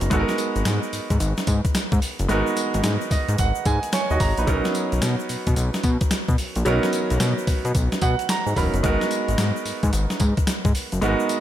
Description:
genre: R&B, new jack swing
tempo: 110 BPM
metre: 4/4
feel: swing 64% on 16ths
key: G# minor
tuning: A4 = 440 Hz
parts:
  - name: bright concert grand piano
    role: accompaniment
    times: 0.0-11.4 s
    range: F#3 to B5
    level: -24 LUFS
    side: right 2 dB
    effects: none
  - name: fat analog bass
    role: bass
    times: 0.0-11.2 s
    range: E1 to B2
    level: -22 LUFS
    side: left 1 dB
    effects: none
  - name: crisp 8-bit digital drum machine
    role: drums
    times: 0.0-11.4 s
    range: hi-hat, kick drum, snare drum, tambourine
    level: -24 LUFS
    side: left 1 dB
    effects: overdrive
  - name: tube shaker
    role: percussion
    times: 0.0-11.4 s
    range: none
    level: -39 LUFS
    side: left 10 dB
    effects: none
room: light reverb, digital ambience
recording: none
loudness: -20 LUFS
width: side -12 dB against mid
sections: 0.0-11.4 A section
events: grand piano fill 2.8-4.5, 7.7-8.8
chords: 0.1 G#m9; 4.5 Bmaj9; 8.8 G#m9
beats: | 0.11 0.66 1.20 1.75 | 2.29 2.84 3.38 3.93 | 4.47 5.02 5.57 6.11 | 6.66 7.20 7.75 8.29 | 8.84 9.38 9.93 10.47 | 11.02

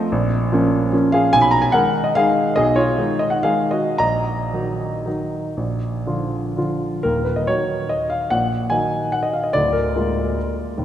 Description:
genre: classical, piano waltz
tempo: 105-156 BPM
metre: 3/4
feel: rubato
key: Eb minor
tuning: A4 = 440 Hz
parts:
  - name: warm grand piano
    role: solo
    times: 0.0-10.8 s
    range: D1 to Cb6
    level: -17 LUFS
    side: equal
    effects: none
room: wet church reverb, RT60 3.3 s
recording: recorded in a church or concert hall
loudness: -17 LUFS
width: side -10 dB against mid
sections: 0.0-7.0 A section; 7.0-10.8 B section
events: none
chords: 0.1 Bbm; 1.3 Abm/Cb; 4.0 Ebm/Bb; 5.6 Bb; 7.0 Ebm; 9.5 Bb7/D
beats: | 0.11 0.52 0.93 | 1.34 1.74 2.15 | 2.57 2.99 3.44 | 3.99 4.53 5.06 | 5.56 6.06 6.57 | 7.04 7.47 7.89 | 8.30 8.71 9.13 | 9.54 9.94 10.36 | 10.77

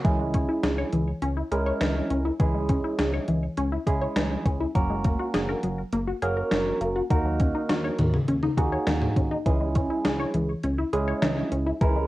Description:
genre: synth-pop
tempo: 102 BPM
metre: 4/4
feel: straight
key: C# dorian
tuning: A4 = 439 Hz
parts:
  - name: barky tine electric piano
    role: accompaniment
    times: 0.0-12.1 s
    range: G#3 to A#4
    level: -28 LUFS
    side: right 2 dB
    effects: phaser, cassette tape
  - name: resonant blip pluck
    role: arpeggios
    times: 0.0-12.1 s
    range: D#3 to C#5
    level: -28 LUFS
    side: left 1 dB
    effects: phaser, cassette tape, tape echo
  - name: chorused synth bass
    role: bass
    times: 0.0-12.1 s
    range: F#1 to D#2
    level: -30 LUFS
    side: equal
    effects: none
  - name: gated 80s digital drum machine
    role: drums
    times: 0.0-11.9 s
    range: hi-hat, kick drum, snare drum, toms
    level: -26 LUFS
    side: equal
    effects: gated reverb, gated reverb snare, overdrive, cassette tape
room: moderate studio ambience, RT60 0.5 s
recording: home recording on cassette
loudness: -23 LUFS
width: side -17 dB against mid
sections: 0.0-12.1 A section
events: none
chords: 0.0 C#m; 4.8 F#add9; 7.1 D#m7; 9.5 C#m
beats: | 0.05 0.64 1.22 1.81 | 2.40 2.99 3.58 4.16 | 4.75 5.34 5.93 6.52 | 7.11 7.69 8.28 8.87 | 9.46 10.05 10.63 11.22 | 11.81

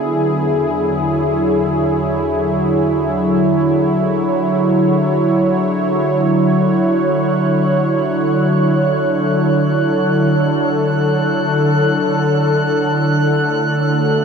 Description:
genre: ambient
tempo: free time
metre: none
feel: none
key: unclear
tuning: A4 = 441 Hz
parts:
  - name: warm analog pad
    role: sustained chords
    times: 0.0-14.2 s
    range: D3 to C#5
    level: -14 LUFS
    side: equal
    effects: chorus
  - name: deep rumbling drone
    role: bass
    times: 0.0-6.2 s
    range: E2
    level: -35 LUFS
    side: equal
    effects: built-in reverb
  - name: drifting glass-harmonics texture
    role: texture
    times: 7.0-14.2 s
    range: F#6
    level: -24 LUFS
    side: left 1 dB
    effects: chorus, built-in reverb
  - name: muted felt-like synth keys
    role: arpeggios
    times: 7.2-13.0 s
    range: D4 to C#6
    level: -34 LUFS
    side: left 1 dB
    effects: none
room: wet huge ambient reverb, RT60 7.4 s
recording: dreamy mix soaked in reverb, cassette tape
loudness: -13 LUFS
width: side -6 dB against mid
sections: 0.0-6.2 A section; 6.2-14.2 B section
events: fade-out on synth drone 0.0-6.2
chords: 0.0 E13; 6.2 Dmaj9; 13.0 Bm7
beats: free time

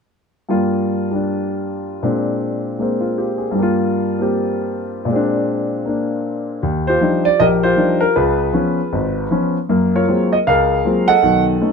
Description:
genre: solo jazz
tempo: 156 BPM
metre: 4/4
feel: swing 64% on 8ths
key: Eb major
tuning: A4 = 440 Hz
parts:
  - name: warm grand piano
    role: solo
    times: 0.5-11.7 s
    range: Ab1 to Gb5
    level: -15 LUFS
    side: equal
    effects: none
room: light reverb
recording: close, detailed microphones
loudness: -15 LUFS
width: side -5 dB against mid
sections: 0.5-6.6 A section; 6.6-11.7 B section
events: none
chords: 0.5 Gm7; 2.0 Bb9; 3.6 Gm7; 5.1 Bb9; 6.6 Ebmaj9; 8.2 Db7; 9.7 Gbmaj9#11; 11.2 B9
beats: | 0.49 0.87 1.25 1.64 | 2.02 2.41 2.79 3.17 | 3.56 3.94 4.32 4.71 | 5.09 5.47 5.85 6.24 | 6.62 7.00 7.39 7.77 | 8.15 8.54 8.92 9.30 | 9.69 10.07 10.45 10.84 | 11.22 11.60

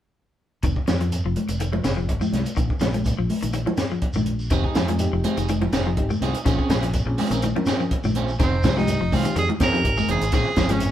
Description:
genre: afrobeat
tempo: 124 BPM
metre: 4/4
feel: straight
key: F minor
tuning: A4 = 440 Hz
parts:
  - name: clean electric guitar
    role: arpeggios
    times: 0.6-10.8 s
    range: Eb3 to F3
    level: -29 LUFS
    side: left 5 dB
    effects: none
  - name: fingered electric bass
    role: bass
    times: 0.6-10.9 s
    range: F1 to F2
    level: -25 LUFS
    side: equal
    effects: none
  - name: compact cocktail drum kit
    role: drums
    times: 0.6-10.9 s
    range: hi-hat, kick drum, snare drum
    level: -25 LUFS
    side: equal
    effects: none
  - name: shekere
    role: percussion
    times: 0.6-10.9 s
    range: none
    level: -33 LUFS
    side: right 1 dB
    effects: none
  - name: congas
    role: percussion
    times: 0.9-10.8 s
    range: none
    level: -27 LUFS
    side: equal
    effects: none
  - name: reed electric piano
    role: accompaniment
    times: 4.5-10.9 s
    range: Ab3 to Bb4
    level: -30 LUFS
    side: left 2 dB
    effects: none
  - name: electric guitar at the edge of break-up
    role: stabs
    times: 4.5-10.8 s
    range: F3 to Ab4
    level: -29 LUFS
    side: right 5 dB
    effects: spring reverb
  - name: edgy tenor saxophone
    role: melody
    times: 8.4-10.9 s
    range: C4 to Bb4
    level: -25 LUFS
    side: right 2 dB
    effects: none
room: moderate stone room reverb, RT60 1.1 s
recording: band playing live in one room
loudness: -20 LUFS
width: side -11 dB against mid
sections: 0.6-8.4 A section; 8.4-10.9 B section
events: none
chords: 0.6 F7(no3); 2.6 Bb5; 4.5 Fm7; 6.5 Bbm9; 8.4 Fm7; 10.3 Bbm9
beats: | 0.64 1.12 1.61 2.09 | 2.58 3.06 3.55 4.03 | 4.52 5.00 5.49 5.97 | 6.46 6.94 7.43 7.91 | 8.40 8.88 9.36 9.85 | 10.33 10.81

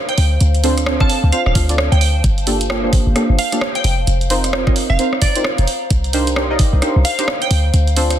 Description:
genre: UK garage, two-step garage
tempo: 131 BPM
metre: 4/4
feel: swing 61% on 16ths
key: G minor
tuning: A4 = 439 Hz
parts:
  - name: warbly tape-like pad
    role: texture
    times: 0.0-8.2 s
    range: C5 to Bb5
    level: -27 LUFS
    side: left 3 dB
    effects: chorus, built-in reverb, sidechain pumping
  - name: glassy wavetable pluck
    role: melody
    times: 0.1-7.6 s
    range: D5 to A5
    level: -23 LUFS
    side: right 2 dB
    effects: chorus, cassette tape, ping-pong delay
  - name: punchy analog drum machine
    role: drums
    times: 0.1-8.2 s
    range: hi-hat, rim click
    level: -21 LUFS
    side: right 2 dB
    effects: soft clipping on snare
  - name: short 808-style bass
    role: bass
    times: 0.2-8.2 s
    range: D1 to D2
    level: -15 LUFS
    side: equal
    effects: tube saturation, sidechain pumping
  - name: deep mellow chord stab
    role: stabs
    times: 0.6-8.1 s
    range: Bb3 to F5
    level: -20 LUFS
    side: right 1 dB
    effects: chorus, cassette tape, ping-pong delay
  - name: electronic kick drum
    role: drums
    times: 1.0-6.7 s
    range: none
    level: -16 LUFS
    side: equal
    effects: none
room: little or no reverb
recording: dense, heavily limited modern master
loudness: -13 LUFS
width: side -11 dB against mid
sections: 0.0-8.2 A section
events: none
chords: 0.2 Dm7; 2.2 Gm9; 4.1 F7sus4; 5.7 Cm9; 7.5 Dm7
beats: | 0.41 0.87 1.32 1.78 | 2.24 2.70 3.16 3.62 | 4.07 4.53 4.99 5.45 | 5.91 6.36 6.82 7.28 | 7.74

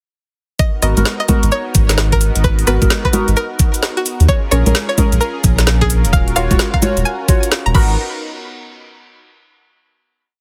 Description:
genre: UK garage, two-step garage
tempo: 130 BPM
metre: 4/4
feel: swing 63% on 16ths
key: G# dorian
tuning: A4 = 441 Hz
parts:
  - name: string-like resonator pluck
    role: melody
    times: 0.6-7.9 s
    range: F#4 to B5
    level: -24 LUFS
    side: equal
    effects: chorus, vintage 12-bit sampler grit, delay
  - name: warm analog pad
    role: sustained chords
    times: 0.6-8.0 s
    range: B3 to A#4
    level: -29 LUFS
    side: equal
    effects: chorus, sidechain pumping
  - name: electronic kick drum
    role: drums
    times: 0.6-7.9 s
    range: none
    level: -17 LUFS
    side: equal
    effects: none
  - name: garage drum kit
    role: drums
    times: 0.6-7.9 s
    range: congas, crash cymbal, hi-hat, rim click, shaker, snare drum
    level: -21 LUFS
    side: equal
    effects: none
  - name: deep mellow chord stab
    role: stabs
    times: 0.8-7.9 s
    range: B3 to C#5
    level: -24 LUFS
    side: equal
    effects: chorus, phaser, delay
  - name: saturated sub bass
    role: bass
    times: 0.8-8.0 s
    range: D#1 to D#2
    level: -16 LUFS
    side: equal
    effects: tube saturation
room: little or no reverb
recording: heavily compressed radio sound, multiband compression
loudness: -14 LUFS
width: mono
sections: 0.6-8.0 drop; 8.0-9.8 final hit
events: drop 0.6-8.0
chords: 0.6 G#m9; 4.3 A#m7; 6.1 D#m9; 7.7 G#m9; 8.0 N.C.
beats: | 0.59 1.05 1.52 1.98 | 2.44 2.90 3.36 3.82 | 4.29 4.75 5.21 5.67 | 6.13 6.59 7.05 7.52

